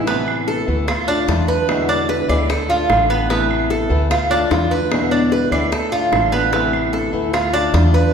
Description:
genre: latin, Cuban son and guajira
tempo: 149 BPM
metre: 4/4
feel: straight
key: A harmonic minor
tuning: A4 = 440 Hz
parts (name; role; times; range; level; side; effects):
- fingerpicked swing-style acoustic guitar; accompaniment; 0.0-8.1 s; B2 to F4; -21 LUFS; left 3 dB; none
- Cuban tres; arpeggios; 0.0-8.1 s; B3 to D5; -19 LUFS; right 3 dB; none
- upright bass; bass; 0.0-8.1 s; A1 to E2; -21 LUFS; equal; none
- bongos; percussion; 0.1-7.9 s; none; -26 LUFS; left 4 dB; none
- claves; percussion; 0.3-7.5 s; none; -29 LUFS; right 4 dB; none
room: wet recital hall reverb, RT60 1.5 s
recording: recorded in a church or concert hall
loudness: -15 LUFS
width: side -7 dB against mid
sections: 0.1-8.1 A section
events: none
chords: 0.1 Amadd9; 0.9 Dm; 1.7 E7; 2.5 Dm; 3.3 Amadd9; 4.1 Dm; 4.9 E7; 5.7 Dm; 6.5 Amadd9; 7.3 Dm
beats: | 0.07 0.48 0.88 1.28 | 1.69 2.09 2.49 2.90 | 3.30 3.70 4.11 4.51 | 4.92 5.32 5.72 6.13 | 6.53 6.93 7.34 7.74

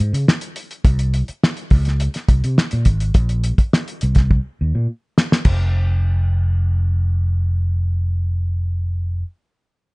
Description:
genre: lush 1970s-style soul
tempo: 104 BPM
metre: 4/4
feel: straight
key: unclear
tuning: A4 = 440 Hz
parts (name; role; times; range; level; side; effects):
- fingered electric bass; bass; 0.0-9.2 s; F1 to Db3; -17 LUFS; equal; none
- cloth-damped thuddy drum kit; drums; 0.1-5.6 s; crash cymbal, hi-hat, kick drum, snare drum; -15 LUFS; equal; none
room: little or no reverb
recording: nothing above 10.3 kHz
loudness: -16 LUFS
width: side -28 dB against mid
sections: 0.0-5.5 A section; 5.5-7.8 B section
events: drum fill 4.3-5.5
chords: none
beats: 0.27 | 0.84 1.42 2.00 2.57 | 3.15 3.72 4.30 4.88 | 5.45 6.03 6.61 7.18

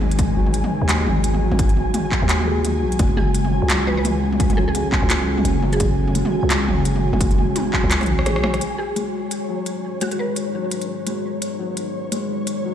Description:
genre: half-time drum and bass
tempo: 171 BPM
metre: 4/4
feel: swing 57% on 16ths, half-time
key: G# phrygian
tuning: A4 = 436 Hz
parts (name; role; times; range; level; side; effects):
- deep dark ambient pad; sustained chords; 0.0-12.7 s; G#3 to B4; -28 LUFS; right 4 dB; chorus, built-in reverb, sidechain pumping
- felt-muted upright piano; arpeggios; 0.0-12.7 s; F#3 to G#4; -26 LUFS; left 6 dB; vintage 12-bit sampler grit, low-pass filter, ping-pong delay
- growling 808-style bass; bass; 0.0-8.6 s; F#1 to D#2; -21 LUFS; equal; none
- industrial drum kit; drums; 0.0-12.6 s; handclaps, hi-hat, rim click, toms; -24 LUFS; right 1 dB; none
- flickering grainy texture; texture; 0.0-12.7 s; C#5 to G#5; -30 LUFS; equal; built-in reverb
- electronic kick drum; drums; 0.2-7.8 s; none; -21 LUFS; equal; none
- mallet-like synth pluck; melody; 3.2-6.0, 8.8-10.7 s; F#4 to B4; -32 LUFS; right 1 dB; ensemble chorus, cassette tape, ping-pong delay
room: light reverb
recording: played on a big sound system in a bare room, large studio reverb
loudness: -18 LUFS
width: side -9 dB against mid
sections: 0.0-8.6 A section; 8.6-12.7 B section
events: kick drops out 7.9-8.6; drum fill 7.9-8.6; band accent 8.5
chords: 0.0 G#m7; 3.0 F#m; 8.6 G#m7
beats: | 0.19 0.54 0.89 1.24 | 1.59 1.94 2.29 2.65 | 3.00 3.35 3.70 4.05 | 4.40 4.75 5.10 5.45 | 5.80 6.16 6.51 6.86 | 7.21 7.56 7.91 8.26 | 8.61 8.96 9.31 9.66 | 10.01 10.37 10.72 11.07 | 11.42 11.77 12.12 12.47

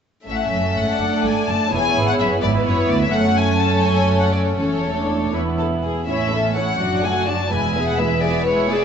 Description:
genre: quick classical-period movement for symphony orchestra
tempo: 84 BPM (dotted quarters)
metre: 6/8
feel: rubato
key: A major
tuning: A4 = 441 Hz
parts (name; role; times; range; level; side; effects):
- warm studio violin section; melody; 0.3-8.8 s; C#5 to A5; -23 LUFS; left 4 dB; none
- dark studio violin section; second line; 0.3-8.8 s; F#4 to F#5; -24 LUFS; left 2 dB; none
- warm studio viola section; accompaniment; 0.3-8.8 s; F#3 to G#4; -22 LUFS; right 2 dB; none
- dark studio double bass section; bass; 0.3-8.8 s; E1 to D2; -25 LUFS; right 2 dB; none
- warm studio cello section; bass; 0.3-8.8 s; D2 to A2; -25 LUFS; right 2 dB; none
room: wet scoring stage reverb, RT60 1.6 s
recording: nothing above 8.0 kHz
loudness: -17 LUFS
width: side -7 dB against mid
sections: 0.3-8.8 A section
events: none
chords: 0.3 A; 1.0 D; 1.7 E; 3.1 F#m; 4.6 A/E; 5.3 E; 6.1 A; 6.8 D/F#; 7.5 E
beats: | 0.28 1.00 | 1.72 2.43 | 3.14 3.86 | 4.60 5.34 | 6.08 6.81 | 7.52 8.24

